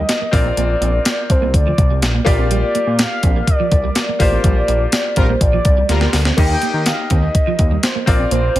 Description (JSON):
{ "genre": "1980s-style pop", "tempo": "124 BPM", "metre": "4/4", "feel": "straight", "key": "unclear", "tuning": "A4 = 441 Hz", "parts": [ { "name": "mellow horn-like synth lead", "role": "melody", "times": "0.0-8.6 s", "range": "C5 to G5", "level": "-21 LUFS", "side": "equal", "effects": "chorus, tape echo" }, { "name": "bright grand piano", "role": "accompaniment", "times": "0.0-8.6 s", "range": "Bb3 to Eb5", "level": "-24 LUFS", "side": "left 2 dB", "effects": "none" }, { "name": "clean electric guitar", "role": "riff", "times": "0.0-8.6 s", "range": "F3 to Eb4", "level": "-26 LUFS", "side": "right 7 dB", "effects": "ensemble chorus" }, { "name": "fat analog bass", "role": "bass", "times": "0.0-8.6 s", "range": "A1 to Eb3", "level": "-18 LUFS", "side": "equal", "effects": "none" }, { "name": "clean 12-bit digital drum machine", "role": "drums", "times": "0.1-8.6 s", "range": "crash cymbal, hi-hat, kick drum, snare drum, tambourine", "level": "-16 LUFS", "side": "equal", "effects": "overdrive" }, { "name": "analog synth brass", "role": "stabs", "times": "5.2-6.1 s", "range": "G3 to Bb4", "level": "-24 LUFS", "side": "left 1 dB", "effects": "chorus, tape echo" } ], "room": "light reverb", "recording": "none", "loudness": "-13 LUFS", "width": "side -14 dB against mid", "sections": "0.0-8.6 A section", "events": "band accent 4.4-6.4; drum fill 5.9-6.4", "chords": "0.3 Bbadd9; 2.3 Gm7; 6.4 Eb; 8.1 Bbadd9" }